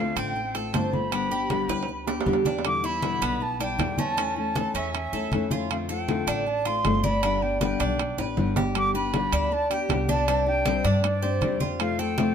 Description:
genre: latin, Cuban son and guajira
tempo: 157 BPM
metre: 4/4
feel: straight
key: unclear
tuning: A4 = 437 Hz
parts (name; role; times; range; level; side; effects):
- reedy silver concert flute; melody; 0.0-12.3 s; D5 to D6; -30 LUFS; right 1 dB; none
- nylon-string guitar; accompaniment; 0.0-12.3 s; B2 to G4; -29 LUFS; left 6 dB; none
- Cuban tres; arpeggios; 0.0-12.3 s; B3 to C5; -29 LUFS; right 3 dB; none
- upright bass; bass; 0.0-12.3 s; G1 to G2; -31 LUFS; equal; none
- congas; percussion; 0.2-12.3 s; none; -32 LUFS; left 1 dB; none
- timbales; percussion; 0.2-12.3 s; none; -32 LUFS; right 8 dB; none
room: moderate plate reverb, RT60 2.5 s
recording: minimal, uncompressed stereo recording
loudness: -23 LUFS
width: side -8 dB against mid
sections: 0.0-2.6 A section; 2.6-12.3 B section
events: drum fill 1.7-2.6, 8.2-8.8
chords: 0.0 Dm7; 1.1 G; 2.6 Em7; 4.2 A/E; 5.7 Dm7; 7.2 G; 10.3 Csus2; 11.8 F

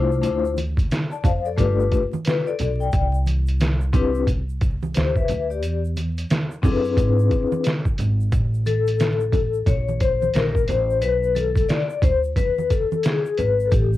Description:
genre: hip hop, jazz-hop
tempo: 89 BPM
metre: 4/4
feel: swing 62% on 16ths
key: unclear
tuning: A4 = 441 Hz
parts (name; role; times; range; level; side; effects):
- vibraphone with medium mallets; accompaniment; 0.0-14.0 s; A3 to A5; -22 LUFS; left 5 dB; none
- upright bass; bass; 0.0-14.0 s; G1 to G#2; -23 LUFS; equal; none
- egg shaker and congas; percussion; 0.1-14.0 s; none; -32 LUFS; right 5 dB; none
- trip hop sampler-style drum kit; drums; 0.2-13.9 s; hi-hat, kick drum, snare drum; -21 LUFS; equal; cassette tape
room: light reverb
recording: home recording on cassette, vinyl crackle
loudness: -19 LUFS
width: side -15 dB against mid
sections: 0.0-8.3 A section; 8.3-14.0 B section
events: vibraphone solo 8.3-14.0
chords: 0.2 Dm7; 1.6 G9; 2.9 Cmaj9; 5.6 E7b13; 8.3 N.C.; 9.7 Bbmadd9; 11.0 Bm7; 12.4 E

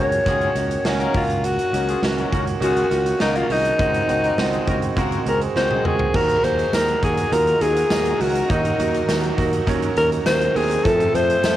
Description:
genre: 1980s-style pop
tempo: 102 BPM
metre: 4/4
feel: straight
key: unclear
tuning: A4 = 440 Hz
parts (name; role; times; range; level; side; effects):
- breathy alto saxophone; melody; 0.0-11.6 s; Db4 to Db5; -21 LUFS; left 2 dB; cassette tape
- bright grand piano; accompaniment; 0.0-11.6 s; Eb3 to A4; -24 LUFS; right 6 dB; cassette tape
- clear horn section; stabs; 0.0-5.9 s; Gb3 to Bb4; -31 LUFS; left 7 dB; cassette tape, tape echo
- sustaining fretless electric bass; bass; 0.0-11.6 s; C2 to F2; -26 LUFS; equal; none
- big rock drum kit; drums; 0.1-11.6 s; crash cymbal, hi-hat, kick drum, snare drum, toms; -26 LUFS; equal; cassette tape
- string machine, violins; sustained chords; 6.1-11.6 s; Eb3 to C5; -29 LUFS; left 2 dB; ensemble chorus, cassette tape
- tambourine; percussion; 6.7-11.6 s; none; -39 LUFS; left 11 dB; none
room: moderate spring reverb, RT60 2.7 s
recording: home recording on cassette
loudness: -17 LUFS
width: side -13 dB against mid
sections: 0.0-6.1 A section; 6.1-11.6 B section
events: drum fill 5.6-6.1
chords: 0.0 Gb6/Db; 1.1 Ebm7/Db; 3.8 Ab7/Db; 6.1 Ebm; 10.9 F

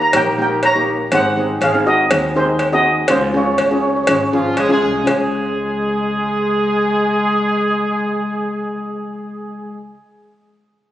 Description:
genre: calypso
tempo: 122 BPM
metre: 4/4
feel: straight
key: Db major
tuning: A4 = 440 Hz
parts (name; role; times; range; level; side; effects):
- steel pan; melody; 0.0-4.2 s; Eb4 to Bb5; -16 LUFS; equal; none
- upright bass; bass; 0.0-9.9 s; Ab1 to Eb2; -28 LUFS; equal; none
- steel pan; accompaniment; 0.1-9.9 s; Bb3 to Ab4; -19 LUFS; left 1 dB; none
- cowbell; percussion; 0.1-5.3 s; none; -21 LUFS; equal; none
- warm horn section; second line; 4.3-9.8 s; F3 to Ab4; -18 LUFS; equal; none
room: moderate concert hall reverb, RT60 2.1 s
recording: recorded on a phone in the room, studio reverb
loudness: -14 LUFS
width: side -12 dB against mid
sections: 0.0-5.1 A section; 5.1-9.0 B section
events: none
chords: 0.0 Eb7; 1.1 Ab7; 3.1 Db

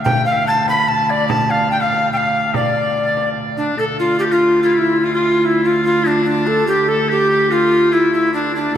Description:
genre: medieval dance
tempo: 145 BPM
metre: 3/4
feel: straight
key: D dorian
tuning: A4 = 440 Hz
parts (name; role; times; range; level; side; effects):
- tenor recorder; melody; 0.0-8.8 s; D4 to B5; -15 LUFS; equal; none
- clear viola da gamba; drone; 0.0-8.8 s; D2; -24 LUFS; right 3 dB; none
- bright shawm; second line; 0.1-8.8 s; D4 to B5; -21 LUFS; left 2 dB; none
- frame drum; percussion; 0.1-3.7 s; none; -25 LUFS; right 1 dB; none
room: wet cathedral reverb, RT60 5.0 s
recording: recorded in a church or concert hall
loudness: -14 LUFS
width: side -10 dB against mid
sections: 0.0-3.8 A section; 3.8-8.8 A section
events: none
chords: none

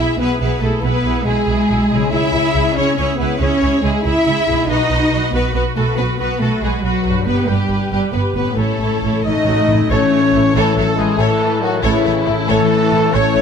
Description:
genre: cinematic, heroic adventure film score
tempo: 93 BPM (dotted quarters)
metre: 12/8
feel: straight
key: A lydian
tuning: A4 = 440 Hz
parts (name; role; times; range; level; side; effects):
- rich symphonic violin section; melody; 0.0-13.4 s; E4 to E5; -24 LUFS; left 3 dB; none
- warm symphonic violin section; second line; 0.0-13.4 s; E4 to E5; -24 LUFS; left 2 dB; none
- rich symphonic viola section; accompaniment; 0.0-13.4 s; C#3 to C#5; -23 LUFS; right 2 dB; none
- mellow French horn section; sustained chords; 0.0-13.4 s; E3 to E4; -21 LUFS; left 4 dB; none
- concert harp; arpeggios; 0.0-13.4 s; G2 to A5; -24 LUFS; left 11 dB; none
- rich symphonic double bass section; bass; 0.0-13.4 s; G1 to C#2; -21 LUFS; right 3 dB; none
- warm symphonic cello section; bass; 0.0-13.4 s; A2 to E4; -21 LUFS; right 3 dB; none
- timpani; percussion; 8.6-9.9 s; A2; -24 LUFS; right 1 dB; none
- clear trumpet section; stabs; 9.2-13.4 s; E4 to D#5; -22 LUFS; right 2 dB; none
- large flute ensemble; second line; 9.3-13.4 s; E4 to D#5; -25 LUFS; right 1 dB; none
- warm clarinet; second line; 9.9-13.4 s; E4; -29 LUFS; left 2 dB; none
- warm cor anglais; second line; 9.9-13.4 s; A4; -28 LUFS; right 3 dB; none
- bright trombone section; sustained chords; 9.9-13.4 s; E3 to A3; -27 LUFS; right 6 dB; none
room: light reverb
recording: close, detailed microphones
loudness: -14 LUFS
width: side -7 dB against mid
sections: 0.0-9.9 A section; 9.9-13.4 A section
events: timpani fill 8.6-9.9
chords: 0.0 E/B; 2.1 C#m; 4.7 B; 7.3 G; 8.6 A

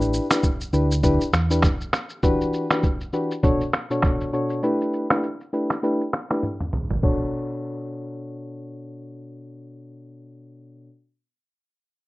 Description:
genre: afrobeats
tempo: 100 BPM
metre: 4/4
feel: swing 58% on 16ths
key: B minor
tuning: A4 = 438 Hz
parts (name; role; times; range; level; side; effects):
- soft electric-piano-like synth keys; accompaniment; 0.0-10.9 s; B2 to C#5; -24 LUFS; left 1 dB; chorus
- hollow-body short-scale fingered electric bass; bass; 0.0-1.7 s; A1 to E2; -21 LUFS; equal; none
- trip hop sampler-style drum kit; drums; 0.0-7.2 s; crash cymbal, finger snaps, kick drum, rim click, shaker, toms; -23 LUFS; equal; none
room: light reverb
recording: rough home demo mix, low-pass filter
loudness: -20 LUFS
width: side -20 dB against mid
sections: 0.0-7.0 A section; 7.0-9.4 B section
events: filter sweep 0.0-7.0; drum fill 6.4-7.0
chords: 0.0 A7sus4 (rootless); 2.2 Em9; 3.4 Bm7; 4.6 A7sus4; 7.0 Bm7

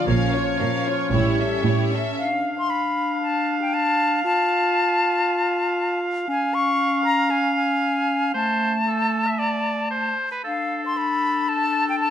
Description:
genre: cinematic, heroic adventure film score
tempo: 116 BPM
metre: 4/4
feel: straight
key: D dorian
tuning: A4 = 443 Hz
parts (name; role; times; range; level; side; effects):
- clear studio violin section; melody; 0.0-2.2 s; Db5 to F5; -29 LUFS; left 3 dB; none
- dark clarinet; second line; 0.0-12.1 s; A3 to G4; -26 LUFS; left 2 dB; none
- warm symphonic violin section; second line; 0.0-2.2 s; G4 to Db5; -31 LUFS; left 1 dB; none
- rich symphonic viola section; accompaniment; 0.0-2.2 s; Db4 to F4; -28 LUFS; right 2 dB; none
- mellow French horn section; sustained chords; 0.0-1.9 s; F3 to Db4; -27 LUFS; left 6 dB; none
- bright oboe; second line; 0.1-12.1 s; A4 to E#5; -25 LUFS; right 2 dB; none
- warm symphonic cello section; bass; 0.1-2.1 s; A2 to Bb2; -25 LUFS; right 4 dB; none
- warm symphonic double bass section; bass; 0.1-1.6 s; A1 to Bb1; -24 LUFS; right 4 dB; none
- bright concert flute; second line; 2.2-12.1 s; F5 to C#6; -23 LUFS; left 2 dB; none
room: moderate scoring stage reverb, RT60 2.0 s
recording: close, detailed microphones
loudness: -19 LUFS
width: side -9 dB against mid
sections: 0.0-2.2 A section; 2.2-12.1 B section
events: build-up 0.0-2.2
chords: 0.1 Bbm; 1.1 A7; 2.2 Dm; 4.3 N.C.; 6.3 C#; 8.3 Am; 10.4 D5

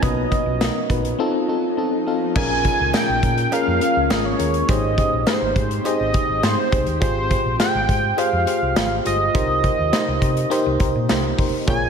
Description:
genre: 1980s-style pop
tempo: 103 BPM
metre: 4/4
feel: straight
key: Bb dorian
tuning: A4 = 440 Hz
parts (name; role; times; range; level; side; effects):
- octave-doubled lead; melody; 0.0-11.9 s; C5 to Ab5; -22 LUFS; right 1 dB; chorus, slapback echo, tape echo
- FM electric piano with auto-pan; accompaniment; 0.0-11.9 s; Ab2 to A5; -23 LUFS; left 2 dB; slapback echo
- shimmering ambient pad; sustained chords; 0.0-11.9 s; C3 to A4; -29 LUFS; equal; chorus, built-in reverb
- hollow-body short-scale fingered electric bass; bass; 0.0-11.9 s; F1 to C3; -25 LUFS; equal; none
- modern studio drum kit; drums; 0.0-11.8 s; crash cymbal, hi-hat, kick drum, snare drum, tambourine; -23 LUFS; equal; none
- cowbell; percussion; 0.0-11.8 s; none; -37 LUFS; right 7 dB; none
room: moderate concert hall reverb, RT60 2.0 s, studio reverb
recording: big arena sound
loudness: -17 LUFS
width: side -6 dB against mid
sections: 0.0-2.4 A section; 2.4-11.9 B section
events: FM electric piano fill 1.5-2.4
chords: 0.0 B; 1.2 F7; 2.4 Bbm7; 4.7 Abmaj7; 7.0 Fmadd9/Ab; 9.3 Cm7

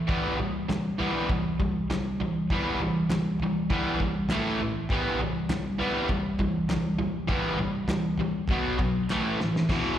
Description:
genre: garage rock duo or trio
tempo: 100 BPM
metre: 4/4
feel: straight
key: E minor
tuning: A4 = 440 Hz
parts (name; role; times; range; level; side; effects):
- crunchy overdriven guitar; riff; 0.0-10.0 s; E2 to B3; -26 LUFS; equal; slapback echo
- cloth-damped thuddy drum kit; drums; 0.1-9.8 s; crash cymbal, kick drum, snare drum, toms; -31 LUFS; equal; none
- group handclap; percussion; 0.7-9.2 s; none; -43 LUFS; left 1 dB; slapback echo
room: light reverb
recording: live gig heard through the venue's PA, recital hall reverb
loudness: -25 LUFS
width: side -10 dB against mid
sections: 0.0-9.7 A section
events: drum fill 9.1-9.7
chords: 0.1 Em; 4.3 A5; 4.9 Em; 8.5 B5; 9.1 A5

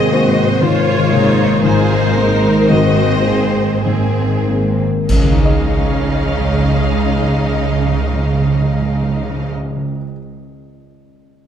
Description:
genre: cinematic, emotional film score for orchestra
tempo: 46-62 BPM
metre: 3/4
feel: rubato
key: Db major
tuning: A4 = 441 Hz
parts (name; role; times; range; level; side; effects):
- rich symphonic violin section; melody; 0.0-9.5 s; C5 to F5; -23 LUFS; left 4 dB; none
- warm symphonic violin section; second line; 0.0-9.5 s; C4 to Eb5; -22 LUFS; left 2 dB; none
- felt-muted upright piano; accompaniment; 0.0-11.5 s; Ab1 to Eb5; -19 LUFS; left 2 dB; none
- warm symphonic viola section; accompaniment; 0.0-9.5 s; Ab3 to Ab4; -24 LUFS; right 3 dB; none
- concert harp; arpeggios; 0.0-10.2 s; Ab2 to Eb5; -21 LUFS; left 7 dB; none
- rich symphonic cello section; bass; 0.0-9.5 s; Ab2 to Db3; -22 LUFS; right 4 dB; none
- warm chamber double bass section; bass; 0.0-9.5 s; Ab1 to Db2; -20 LUFS; right 3 dB; none
- clash cymbals and concert bass drum; percussion; 5.1-7.5 s; none; -18 LUFS; equal; none
- timpani; percussion; 5.1-9.8 s; Db3; -19 LUFS; right 2 dB; none
room: moderate scoring stage reverb, RT60 1.7 s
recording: dark, warm production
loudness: -12 LUFS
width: side -9 dB against mid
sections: 0.0-5.1 A section; 5.1-8.8 B section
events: slowing down 0.0-5.1; band accent 5.1-6.3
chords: 0.0 Abadd9; 5.1 Dbadd9

